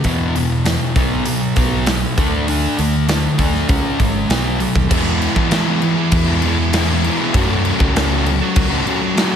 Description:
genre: quiet-loud alternative rock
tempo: 99 BPM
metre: 4/4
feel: straight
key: E major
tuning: A4 = 443 Hz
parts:
  - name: thick fuzz guitar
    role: riff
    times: 0.0-9.4 s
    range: E2 to F#4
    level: -20 LUFS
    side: left 11 dB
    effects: distortion
  - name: thick fuzz guitar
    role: riff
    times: 0.0-9.4 s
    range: E2 to A4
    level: -20 LUFS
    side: right 11 dB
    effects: distortion
  - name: picked electric bass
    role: bass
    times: 0.0-9.4 s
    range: G#1 to F#3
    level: -20 LUFS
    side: equal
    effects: none
  - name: big rock drum kit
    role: drums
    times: 0.0-9.3 s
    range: crash cymbal, hi-hat, kick drum, snare drum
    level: -19 LUFS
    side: equal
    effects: none
room: light reverb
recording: none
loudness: -14 LUFS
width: side -8 dB against mid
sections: 0.0-4.9 A section; 4.9-9.4 B section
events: none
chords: 0.1 E5; 1.0 B5; 2.2 D5; 3.7 C#5; 4.3 B; 4.9 E; 7.3 F#m

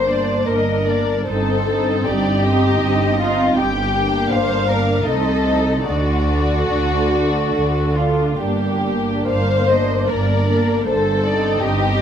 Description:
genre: classical, slow romantic movement for string orchestra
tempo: 62-83 BPM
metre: 3/4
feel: rubato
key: G minor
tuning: A4 = 440 Hz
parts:
  - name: dark symphonic violin section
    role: melody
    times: 0.0-12.0 s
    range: C5 to G5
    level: -25 LUFS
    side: left 3 dB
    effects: none
  - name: dark studio violin section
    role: second line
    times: 0.0-12.0 s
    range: F4 to C5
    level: -20 LUFS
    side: left 2 dB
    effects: none
  - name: dark symphonic viola section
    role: accompaniment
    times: 0.0-12.0 s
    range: A3 to Eb4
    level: -22 LUFS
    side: right 2 dB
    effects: none
  - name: rich symphonic double bass section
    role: bass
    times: 0.0-12.0 s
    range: G1 to D2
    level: -24 LUFS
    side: right 1 dB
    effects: none
  - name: warm symphonic cello section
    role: bass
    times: 0.0-12.0 s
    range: G2 to D3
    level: -22 LUFS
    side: right 2 dB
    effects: none
room: moderate large studio reverb, RT60 1.3 s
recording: none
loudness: -15 LUFS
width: side -8 dB against mid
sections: 0.0-12.0 A section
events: none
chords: 0.0 Gm; 1.3 Cm/G; 3.6 Gm; 5.1 Adim/C; 5.9 D; 8.4 Gm; 10.9 Cm/G

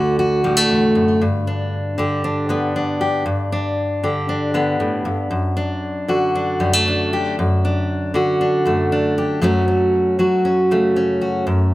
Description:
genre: folk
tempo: 117 BPM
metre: 4/4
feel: straight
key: D major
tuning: A4 = 439 Hz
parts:
  - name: fingerpicked steel-string acoustic guitar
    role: solo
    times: 0.0-11.7 s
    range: D2 to G4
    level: -16 LUFS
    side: equal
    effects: none
room: moderate large studio reverb, RT60 1.1 s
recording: none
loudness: -16 LUFS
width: side -17 dB against mid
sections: 0.0-11.7 A section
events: none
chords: 0.0 D; 1.2 G; 5.3 D/F#; 9.4 F#m

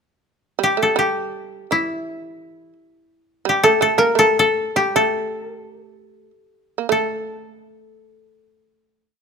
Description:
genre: japanese traditional, Japanese chamber music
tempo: 52-88 BPM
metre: 2/4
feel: rubato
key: unclear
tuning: A4 = 440 Hz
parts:
  - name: koto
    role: melody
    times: 0.6-9.2 s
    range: E4 to Bb4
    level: -17 LUFS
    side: left 3 dB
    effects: none
  - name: shamisen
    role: second line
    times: 0.6-9.2 s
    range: E3 to Bb3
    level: -23 LUFS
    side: right 13 dB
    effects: none
room: light reverb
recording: close, detailed microphones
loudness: -16 LUFS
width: side -6 dB against mid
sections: 0.6-6.9 A section; 6.9-9.2 final chord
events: slowing down 3.5-6.9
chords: none

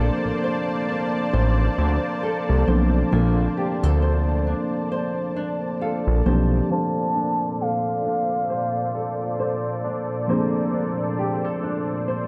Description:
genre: R&B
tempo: 67 BPM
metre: 4/4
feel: swing 58% on 16ths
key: Bb major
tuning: A4 = 440 Hz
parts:
  - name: muted felt-like synth keys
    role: accompaniment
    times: 0.0-12.3 s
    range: F3 to A5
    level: -28 LUFS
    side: equal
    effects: chorus, low-pass filter
  - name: lush unison pad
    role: sustained chords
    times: 0.0-12.3 s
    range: Bb2 to A5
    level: -30 LUFS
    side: equal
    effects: chorus, low-pass filter
  - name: flamenco guitar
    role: arpeggios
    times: 0.0-12.3 s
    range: Bb3 to C5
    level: -32 LUFS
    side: equal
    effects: low-pass filter, tape echo
  - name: fat analog bass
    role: bass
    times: 0.0-6.6 s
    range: A1 to D2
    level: -22 LUFS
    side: equal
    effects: none
  - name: gliding portamento lead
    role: melody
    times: 6.7-9.8 s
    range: F5 to A5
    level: -28 LUFS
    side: equal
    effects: chorus, low-pass filter
room: light reverb, digital ambience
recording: none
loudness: -23 LUFS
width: mono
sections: 0.0-6.7 A section; 6.7-12.3 B section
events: synth keys fill 5.4-6.7; filter sweep 6.7-12.3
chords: 0.0 Bbmaj9

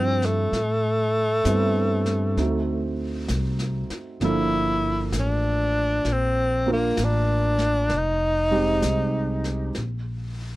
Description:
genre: jazz ballad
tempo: 65 BPM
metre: 4/4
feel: swing 66% on 8ths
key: unclear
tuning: A4 = 440 Hz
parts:
  - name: breathy tenor saxophone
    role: melody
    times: 0.0-9.8 s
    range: A3 to E4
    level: -24 LUFS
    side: equal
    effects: none
  - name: warm concert grand piano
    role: accompaniment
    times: 0.0-9.8 s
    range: F3 to Bb4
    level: -28 LUFS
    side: right 3 dB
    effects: none
  - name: upright bass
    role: bass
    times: 0.0-10.6 s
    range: F1 to A2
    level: -26 LUFS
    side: equal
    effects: none
  - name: vintage brush drum kit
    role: drums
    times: 0.2-10.6 s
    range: brushed snare drum, hi-hat, snare drum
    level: -34 LUFS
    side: left 1 dB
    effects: none
room: little or no reverb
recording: none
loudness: -21 LUFS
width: side -18 dB against mid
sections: 0.0-10.6 A section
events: none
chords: 0.0 Dm11 (rootless); 0.5 Am7; 2.4 D7b9; 4.2 Gm9; 7.9 Fm9; 9.8 N.C.

